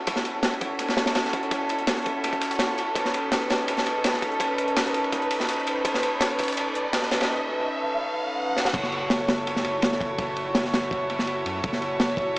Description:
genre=drum and bass, jungle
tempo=166 BPM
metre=4/4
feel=straight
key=F# dorian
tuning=A4 = 444 Hz
part: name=bright chamber string section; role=sustained chords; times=0.0-12.4 s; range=C#4 to C#5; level=-26 LUFS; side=right 1 dB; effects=low-pass filter
part: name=riser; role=sound effects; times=2.2-8.7 s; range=none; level=-33 LUFS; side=equal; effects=none
part: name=breakbeat sampler-style drum kit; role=drums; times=0.1-7.3 s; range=hi-hat, snare drum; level=-36 LUFS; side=equal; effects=high-pass filter on hats, high-pass filter on snare, dub echo
part: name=crunchy breakbeat drum kit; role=drums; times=0.1-12.4 s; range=crash cymbal, kick drum, ride cymbal, snare drum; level=-26 LUFS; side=equal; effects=high-pass filter on kick, high-pass filter on cymbals, high-pass filter on snare, high-pass filter on room, dub echo
part: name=soft dub sub bass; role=bass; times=8.7-12.4 s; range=F#1 to F#2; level=-40 LUFS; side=equal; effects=none
room=wet spring reverb, RT60 2.7 s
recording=echo-heavy mix, small speaker sound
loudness=-23 LUFS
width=side -23 dB against mid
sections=0.0-8.7 A section; 8.7-12.4 B section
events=build-up 0.0-8.7; riser 2.2-8.7; drum fill 8.6; drop 8.7-12.4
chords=0.0 F#m7; 3.0 B9; 8.7 F#m7

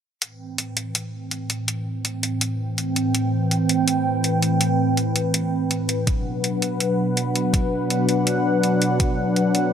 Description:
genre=synthwave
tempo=82 BPM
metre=4/4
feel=straight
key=A dorian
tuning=A4 = 440 Hz
part: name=warm analog pad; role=sustained chords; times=0.2-9.7 s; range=A2 to G5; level=-20 LUFS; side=equal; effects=chorus, sidechain pumping
part: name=electronic hi-hat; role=drums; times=0.2-9.7 s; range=none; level=-23 LUFS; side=left 1 dB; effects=overdrive
part: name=electronic kick drum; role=drums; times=6.1-9.1 s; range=none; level=-22 LUFS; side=equal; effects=overdrive
room=wet plate reverb, RT60 2.4 s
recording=bright 1980s-style digital production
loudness=-20 LUFS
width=side -8 dB against mid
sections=0.2-9.7 A section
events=filter sweep on analog synth pad 0.2-9.7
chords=0.2 Am7; 6.1 Bm

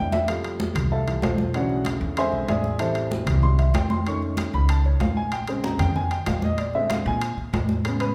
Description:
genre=Afro-Cuban jazz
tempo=190 BPM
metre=4/4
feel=straight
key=unclear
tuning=A4 = 440 Hz
part: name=warm upright piano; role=accompaniment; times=0.0-8.1 s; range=C#3 to C#6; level=-28 LUFS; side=equal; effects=none
part: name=upright bass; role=bass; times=0.0-8.1 s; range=A1 to Bb2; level=-27 LUFS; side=equal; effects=none
part: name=congas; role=percussion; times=0.1-8.1 s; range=none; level=-30 LUFS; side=equal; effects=none
part: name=timbales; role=percussion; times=0.1-8.1 s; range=none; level=-36 LUFS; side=equal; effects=none
room=wet large studio reverb, RT60 1.3 s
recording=band playing live in one room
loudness=-24 LUFS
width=mono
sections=0.3-8.1 A section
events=drum fill 0.0; upright piano solo 0.0-8.1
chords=0.3 Fmaj9; 1.5 Bm11; 2.2 E7b13; 2.8 Am7; 4.1 Faug7; 5.3 Bbm9; 6.6 Bb9

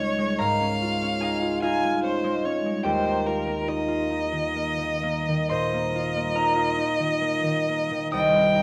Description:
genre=classical, impressionist duo for violin and harp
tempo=41-50 BPM (dotted quarters)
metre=12/8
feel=rubato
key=Eb major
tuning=A4 = 440 Hz
part: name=rich violin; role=melody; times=0.0-8.6 s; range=Bb4 to Ab5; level=-30 LUFS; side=equal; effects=none
part: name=concert harp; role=accompaniment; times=0.0-8.6 s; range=C2 to Eb6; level=-26 LUFS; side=equal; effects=none
room=moderate recital hall reverb, RT60 1.4 s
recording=close, detailed microphones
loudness=-25 LUFS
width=mono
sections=0.0-8.6 A section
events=none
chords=0.0 Dbadd9; 2.9 Ebadd9

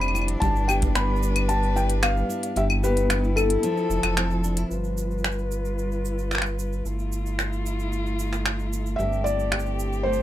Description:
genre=folktronica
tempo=112 BPM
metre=4/4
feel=straight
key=G mixolydian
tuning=A4 = 440 Hz
part: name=felt-muted upright piano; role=melody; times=0.0-4.1, 9.0-10.2 s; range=A4 to B5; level=-26 LUFS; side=left 2 dB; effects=digital delay, plate reverb
part: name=dark string quartet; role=sustained chords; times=0.0-10.2 s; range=F3 to B4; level=-30 LUFS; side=left 1 dB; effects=low-pass filter, plate reverb
part: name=nylon-string guitar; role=arpeggios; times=0.0-5.3, 9.0-10.2 s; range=G2 to G4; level=-30 LUFS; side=equal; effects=digital delay, plate reverb
part: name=warm sub bass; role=bass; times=0.0-10.2 s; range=F1 to G1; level=-26 LUFS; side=equal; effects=none
part: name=organic electronic drum kit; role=drums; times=0.0-10.2 s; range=claves, finger snaps, hi-hat, shaker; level=-27 LUFS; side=left 1 dB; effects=none
part: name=kick drum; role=drums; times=0.4-0.9 s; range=none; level=-27 LUFS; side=equal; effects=none
room=light reverb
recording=none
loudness=-22 LUFS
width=side -13 dB against mid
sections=0.0-4.7 A section; 4.7-10.2 B section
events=kick drops out 2.6-4.7; filter sweep on string quartet 4.7-10.2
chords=0.4 Em7/G; 2.6 G69; 3.6 Fmaj7; 4.7 G7; 6.8 Fmaj7/G; 9.0 Am7/G

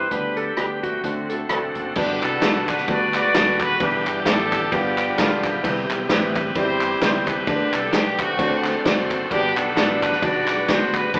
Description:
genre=uptempo gospel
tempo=131 BPM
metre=4/4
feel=swing 56% on 8ths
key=G major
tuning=A4 = 440 Hz
part: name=clean lap steel guitar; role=melody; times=0.0-1.9 s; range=F#4 to B4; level=-27 LUFS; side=equal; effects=none
part: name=clear horn section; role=melody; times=0.0-11.2 s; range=A3 to D5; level=-22 LUFS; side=equal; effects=none
part: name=bright tonewheel organ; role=sustained chords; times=0.0-11.2 s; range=C3 to F#5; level=-28 LUFS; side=equal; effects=slow rotary speaker, overdrive
part: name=modern bright fingered electric bass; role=bass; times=0.0-11.2 s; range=Eb1 to D2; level=-32 LUFS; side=equal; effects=none
part: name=clear baby grand piano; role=accompaniment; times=0.1-11.2 s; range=G2 to D5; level=-26 LUFS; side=equal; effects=none
part: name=swinging big-band drum kit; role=drums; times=0.1-11.2 s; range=crash cymbal, hi-hat, kick drum, ride cymbal, rim click, snare drum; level=-23 LUFS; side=equal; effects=none
part: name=group handclap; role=percussion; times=2.2-11.0 s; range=none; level=-31 LUFS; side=equal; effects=none
room=wet large studio reverb, RT60 1.2 s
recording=band playing live in one room, AM radio sound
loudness=-18 LUFS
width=side -30 dB against mid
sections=0.0-2.0 A section; 2.0-11.2 B section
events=none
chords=0.1 G/D; 1.0 D7; 2.0 Gmaj7; 3.8 Em7; 4.7 G7; 5.6 Cmaj7; 7.5 G; 8.4 D7; 9.3 Gmaj7

